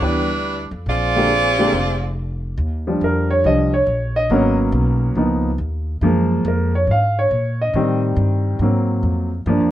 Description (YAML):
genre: jazz, big band swing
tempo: 140 BPM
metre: 4/4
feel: swing 65% on 8ths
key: Eb major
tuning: A4 = 440 Hz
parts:
  - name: bright saxophone section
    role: melody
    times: 0.0-2.1 s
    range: G3 to D5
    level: -18 LUFS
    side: right 1 dB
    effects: none
  - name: clear concert grand piano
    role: accompaniment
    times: 0.0-9.7 s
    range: D3 to F5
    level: -18 LUFS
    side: equal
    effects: none
  - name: upright bass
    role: bass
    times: 0.0-9.7 s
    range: F1 to Bb2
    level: -20 LUFS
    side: equal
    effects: none
room: light reverb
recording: worn, warbling old tape, cassette tape, warbly pitch drift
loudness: -16 LUFS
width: side -13 dB against mid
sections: 0.0-2.6 A section; 2.6-9.7 B section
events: grand piano solo 2.6-9.7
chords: 0.0 G6; 0.9 Bb13; 2.6 Ebmaj9; 4.3 Abm11; 5.2 Db13; 6.0 Gbmaj9; 7.7 Am7b5; 8.6 Ab9